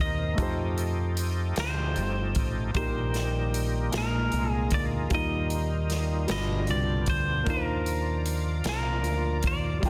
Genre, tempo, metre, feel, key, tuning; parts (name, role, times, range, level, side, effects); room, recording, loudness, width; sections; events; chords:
slow gospel; 51 BPM (dotted quarters); 6/8; straight; A4 = 440 Hz
clean electric guitar; melody; 0.0-9.9 s; Bb4 to Eb5; -36 LUFS; equal; spring reverb, plate reverb
warm grand piano; accompaniment; 0.0-9.9 s; G2 to B5; -36 LUFS; equal; plate reverb
bright tonewheel organ; sustained chords; 0.0-9.9 s; B2 to D5; -38 LUFS; equal; slow rotary speaker, overdrive, chorus vibrato
fingered electric bass; bass; 0.0-9.9 s; G1 to F2; -32 LUFS; equal
swinging big-band drum kit; drums; 0.4-9.9 s; hi-hat, kick drum, snare drum; -34 LUFS; equal
light reverb, studio reverb; dense, heavily limited modern master; -28 LUFS; mono
0.0-9.9 A section
0.4 F9; 2.8 Eb/Bb; 3.9 Bb7sus4; 5.1 Ebadd9; 6.3 G7; 7.5 Cm11/Eb